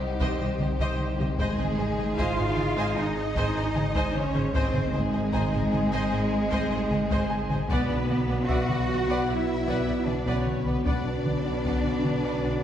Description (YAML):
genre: cinematic, hybrid orchestral and electronic film score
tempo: 76 BPM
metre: 4/4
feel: straight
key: unclear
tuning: A4 = 440 Hz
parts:
  - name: warm symphonic violin section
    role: melody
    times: 0.0-12.6 s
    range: G4 to F#5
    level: -37 LUFS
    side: left 4 dB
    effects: none
  - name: dark trombone section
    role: sustained chords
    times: 0.0-12.6 s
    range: Eb3 to Eb4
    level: -36 LUFS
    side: equal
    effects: none
  - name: lush unison pad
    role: sustained chords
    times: 0.0-12.6 s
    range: D3 to F#5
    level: -38 LUFS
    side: equal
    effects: none
  - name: mellow French horn section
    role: sustained chords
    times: 0.0-12.6 s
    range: F#4 to Eb5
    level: -34 LUFS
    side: right 2 dB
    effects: none
  - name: swelling detuned saw bass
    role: bass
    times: 0.0-12.6 s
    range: Ab1 to C2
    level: -35 LUFS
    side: equal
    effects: none
  - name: warm symphonic cello section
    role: bass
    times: 0.0-12.6 s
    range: G3 to F#4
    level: -30 LUFS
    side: right 1 dB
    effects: none
  - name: bright grand piano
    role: texture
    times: 0.0-12.6 s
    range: Ab4 to Bb5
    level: -41 LUFS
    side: equal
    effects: digital delay
  - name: rich symphonic violin section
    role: second line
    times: 0.2-12.5 s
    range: D5 to Ab5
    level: -37 LUFS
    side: left 1 dB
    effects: none
  - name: warm studio viola section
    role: accompaniment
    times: 0.2-12.5 s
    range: G4 to D5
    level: -36 LUFS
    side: right 1 dB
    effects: none
  - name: thumb-piano-like synth pluck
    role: arpeggios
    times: 0.2-12.6 s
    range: C3 to B4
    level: -37 LUFS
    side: left 4 dB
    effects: none
  - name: warm symphonic double bass section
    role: bass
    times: 0.2-12.5 s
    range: Ab1 to C2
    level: -32 LUFS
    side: right 1 dB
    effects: none
  - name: taiko ensemble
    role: drums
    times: 0.2-12.4 s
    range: none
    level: -31 LUFS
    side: equal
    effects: none
room: wet scoring stage reverb, RT60 1.5 s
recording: heard from further back in the room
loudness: -24 LUFS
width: side -10 dB against mid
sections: 0.0-12.6 A section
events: none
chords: 0.0 Cm; 1.4 Ab; 7.7 Bm